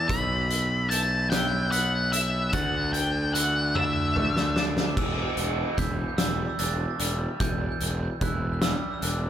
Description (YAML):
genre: post-rock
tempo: 49 BPM (dotted quarters)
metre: 6/8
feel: straight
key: E minor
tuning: A4 = 440 Hz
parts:
  - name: octave-fuzz lead guitar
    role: melody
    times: 0.0-4.6 s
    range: E5 to B5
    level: -28 LUFS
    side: left 2 dB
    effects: distortion, digital delay
  - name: glockenspiel with brass mallets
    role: arpeggios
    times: 0.0-9.3 s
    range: D6 to B6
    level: -35 LUFS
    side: right 6 dB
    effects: digital delay
  - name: twangy electric guitar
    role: arpeggios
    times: 0.0-9.3 s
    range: B2 to E4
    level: -36 LUFS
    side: left 1 dB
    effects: digital delay
  - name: fuzz picked electric bass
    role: bass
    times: 0.0-9.3 s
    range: E1 to D2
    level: -28 LUFS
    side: equal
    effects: overdrive
  - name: oversized low-tuned drum kit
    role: drums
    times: 0.1-9.2 s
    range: crash cymbal, hi-hat, kick drum, snare drum, toms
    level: -28 LUFS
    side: equal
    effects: none
room: light reverb, small room ambience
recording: none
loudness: -23 LUFS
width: side -10 dB against mid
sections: 0.0-5.0 A section; 5.0-9.3 B section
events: drum fill 3.8-5.0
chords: 0.1 Bsus4; 2.5 Dadd9; 5.0 Em7